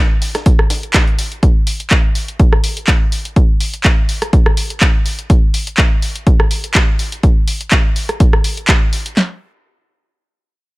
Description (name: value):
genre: house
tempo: 124 BPM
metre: 4/4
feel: swing 54% on 16ths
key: none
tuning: none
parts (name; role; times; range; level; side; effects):
- breakbeat sampler-style drum kit; drums; 0.2-1.3 s; hi-hat, snare drum; -26 LUFS; equal; high-pass filter on snare, sidechain pumping on hats, high-pass filter on hats
- punchy analog drum machine; drums; 0.2-9.1 s; handclaps, hi-hat, rim click; -18 LUFS; equal; none
- punchy analog drum machine; drums; 0.5-9.3 s; handclaps, kick drum, snare drum; -12 LUFS; equal; none
room: little or no reverb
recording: none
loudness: -12 LUFS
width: side -22 dB against mid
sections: 0.0-9.2 A section; 9.2-10.8 B section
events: none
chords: none